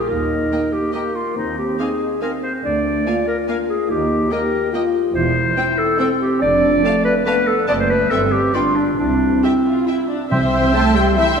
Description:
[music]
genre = quick classical-period movement for symphony orchestra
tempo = 142 BPM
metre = 3/4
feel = straight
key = Eb major, C major from 5.2 s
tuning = A4 = 440 Hz
[part]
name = clear clarinet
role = second line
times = 0.0-11.3 s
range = C4 to E5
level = -19 LUFS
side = equal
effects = none
[part]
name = clear studio viola section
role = accompaniment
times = 0.0-11.4 s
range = A3 to G5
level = -26 LUFS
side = right 1 dB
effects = none
[part]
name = dark French horn section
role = sustained chords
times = 0.1-11.4 s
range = A3 to A4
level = -21 LUFS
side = left 2 dB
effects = none
[part]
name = dark studio cello section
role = bass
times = 0.1-11.4 s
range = D2 to A3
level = -24 LUFS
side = right 3 dB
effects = none
[part]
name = rich studio double bass section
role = bass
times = 0.1-11.4 s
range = E1 to Eb2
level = -26 LUFS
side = right 4 dB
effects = none
[part]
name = rich studio violin section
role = melody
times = 0.5-11.4 s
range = G5 to C6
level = -34 LUFS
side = left 1 dB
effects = none
[part]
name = rich studio violin section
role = second line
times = 0.5-11.4 s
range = C5 to A5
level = -30 LUFS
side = left 2 dB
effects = none
[part]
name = timpani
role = percussion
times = 9.0-10.9 s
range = C3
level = -26 LUFS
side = equal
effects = none
[part]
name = mellow hollow silver concert flute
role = second line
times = 10.3-11.2 s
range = C6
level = -33 LUFS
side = right 2 dB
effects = none
[part]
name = warm oboe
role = second line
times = 10.3-11.3 s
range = G5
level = -29 LUFS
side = right 1 dB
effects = none
[sound]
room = wet concert hall reverb, RT60 2.5 s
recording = minimal, uncompressed stereo recording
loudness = -15 LUFS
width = side -6 dB against mid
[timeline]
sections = 0.1-10.3 A section; 10.3-11.4 B section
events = none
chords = 0.1 Eb; 1.4 Fm7/Eb (rootless); 2.6 Bb7/D; 3.9 Eb; 5.2 C/E; 6.4 Dm/F; 7.7 F#dim; 8.1 C5/G; 8.5 G7; 9.0 C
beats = | 0.09 0.52 0.94 | 1.37 1.79 2.22 | 2.64 3.06 3.48 | 3.90 4.32 4.74 | 5.15 5.57 5.99 | 6.42 6.84 7.26 | 7.68 8.11 8.54 | 8.98 9.43 9.87 | 10.32 10.75 11.18

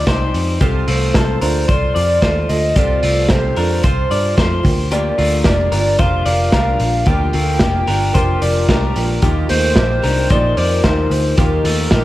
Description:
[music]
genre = jangly indie pop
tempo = 112 BPM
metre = 4/4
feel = straight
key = Bb major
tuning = A4 = 440 Hz
[part]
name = warbly nostalgic lead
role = melody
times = 0.0-12.0 s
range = Bb4 to G5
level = -20 LUFS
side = equal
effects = chorus
[part]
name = picked twelve-string acoustic guitar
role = accompaniment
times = 0.0-12.0 s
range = C3 to D5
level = -24 LUFS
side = right 5 dB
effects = none
[part]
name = electric guitar through a small old amp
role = arpeggios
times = 0.0-12.0 s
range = A3 to D5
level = -22 LUFS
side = left 4 dB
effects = none
[part]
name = vintage muted picked electric bass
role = bass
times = 0.0-12.0 s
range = F1 to G2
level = -18 LUFS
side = equal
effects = none
[part]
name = vintage drum kit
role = drums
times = 0.1-12.0 s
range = hi-hat, kick drum, snare drum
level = -18 LUFS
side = equal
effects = none
[part]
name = warm upright piano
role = accompaniment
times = 4.9-12.0 s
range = D4 to Bb4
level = -27 LUFS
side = left 4 dB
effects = none
[sound]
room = light reverb, small room ambience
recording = none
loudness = -13 LUFS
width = side -16 dB against mid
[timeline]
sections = 0.0-12.0 A section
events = none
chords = 0.0 Cmadd9; 0.6 F/C; 4.6 Bb6; 9.2 Ebadd9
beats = 0.07 | 0.61 1.15 1.69 2.23 | 2.77 3.30 3.84 4.38 | 4.92 5.46 5.99 6.53 | 7.07 7.61 8.15 8.69 | 9.23 9.76 10.30 10.84 | 11.38 11.92

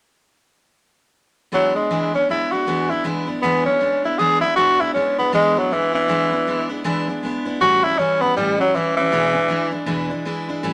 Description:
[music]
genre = rock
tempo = 158 BPM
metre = 4/4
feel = swing 60% on 8ths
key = E mixolydian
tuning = A4 = 442 Hz
[part]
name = raspy tenor saxophone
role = melody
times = 1.5-9.7 s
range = E3 to G#4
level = -19 LUFS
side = equal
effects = none
[part]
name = picked steel-string acoustic guitar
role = accompaniment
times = 1.5-10.7 s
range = E2 to E4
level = -26 LUFS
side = equal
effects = none
[sound]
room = moderate studio reverb, RT60 0.9 s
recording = none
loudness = -19 LUFS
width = mono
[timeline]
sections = 1.5-4.6 A section; 4.6-10.7 B section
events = none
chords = 1.5 E7; 7.6 A7; 9.1 E7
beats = | 1.53 1.91 2.29 2.67 | 3.05 3.43 3.81 4.19 | 4.57 4.95 5.33 5.71 | 6.09 6.47 6.85 7.23 | 7.61 7.99 8.37 8.75 | 9.13 9.51 9.88 10.26 | 10.64

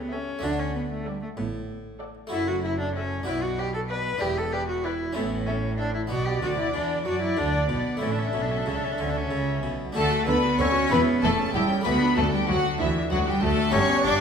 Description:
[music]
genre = classical, baroque-style concerto movement with solo episodes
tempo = 63 BPM (dotted quarters)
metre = 6/8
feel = straight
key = D major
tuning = A4 = 440 Hz
[part]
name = rich cello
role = melody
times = 0.0-14.2 s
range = E3 to B4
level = -26 LUFS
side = left 1 dB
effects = none
[part]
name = harpsichord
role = accompaniment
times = 0.0-14.2 s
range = D2 to G4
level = -33 LUFS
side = left 1 dB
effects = none
[part]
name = rich chamber cello section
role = bass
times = 0.0-14.1 s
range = D2 to F#3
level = -32 LUFS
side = right 2 dB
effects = none
[part]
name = rich chamber double bass section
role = bass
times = 0.0-14.1 s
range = E1 to F#2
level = -33 LUFS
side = right 2 dB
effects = none
[part]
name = rich chamber violin section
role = melody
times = 0.1-14.2 s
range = E5 to D6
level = -32 LUFS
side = left 3 dB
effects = none
[part]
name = rich chamber violin section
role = second line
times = 0.1-14.2 s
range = E4 to E5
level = -31 LUFS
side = left 2 dB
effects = none
[part]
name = rich chamber viola section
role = accompaniment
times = 0.1-14.2 s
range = B3 to D5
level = -33 LUFS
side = right 3 dB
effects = none
[sound]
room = wet recital hall reverb, RT60 1.6 s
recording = minimal, uncompressed stereo recording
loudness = -23 LUFS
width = side -7 dB against mid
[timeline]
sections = 0.0-9.9 A section; 9.9-14.2 B section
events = none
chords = 0.4 D; 2.3 F#m7; 3.3 Bm; 4.2 Em7; 5.2 A; 6.1 Bm; 8.0 A; 9.9 D; 10.9 A9/E; 11.9 D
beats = | 0.44 1.38 | 2.33 3.27 | 4.21 5.16 | 6.10 7.05 | 8.01 8.98 | 9.95 10.91 | 11.86 12.80 | 13.74

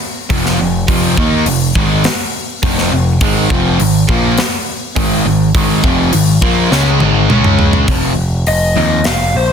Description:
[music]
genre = hard rock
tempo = 103 BPM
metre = 4/4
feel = straight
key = F minor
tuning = A4 = 440 Hz
[part]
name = distorted electric guitar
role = riff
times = 0.3-7.9 s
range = F2 to Eb4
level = -18 LUFS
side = right 1 dB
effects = overdrive
[part]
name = overdriven semi-hollow guitar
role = riff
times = 0.3-9.0 s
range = F2 to Eb4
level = -17 LUFS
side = right 11 dB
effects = phaser
[part]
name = sludgy distorted guitar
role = riff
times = 0.3-9.0 s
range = F2 to Eb4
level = -17 LUFS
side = left 12 dB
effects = overdrive
[part]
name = growling picked electric bass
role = bass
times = 0.3-9.5 s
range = F1 to Eb2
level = -16 LUFS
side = equal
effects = overdrive
[part]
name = tight metal drum kit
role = drums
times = 0.3-9.2 s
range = hi-hat, kick drum, snare drum, toms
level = -16 LUFS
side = equal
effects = none
[part]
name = lead guitar through a small cranked amp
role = melody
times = 8.5-9.5 s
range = C5 to F5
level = -15 LUFS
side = left 2 dB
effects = overdrive
[sound]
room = light reverb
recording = dense, heavily limited modern master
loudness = -10 LUFS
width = side -7 dB against mid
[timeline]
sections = 0.0-7.9 A section; 7.9-9.5 B section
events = drum fill 6.7-7.9; lead electric guitar solo 7.9-9.5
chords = 0.0 Fm; 3.2 Ab5; 7.3 Db5; 7.9 F5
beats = 0.30 | 0.89 1.47 2.05 2.63 | 3.22 3.80 4.38 4.97 | 5.55 6.13 6.72 7.30 | 7.88 8.47 9.05

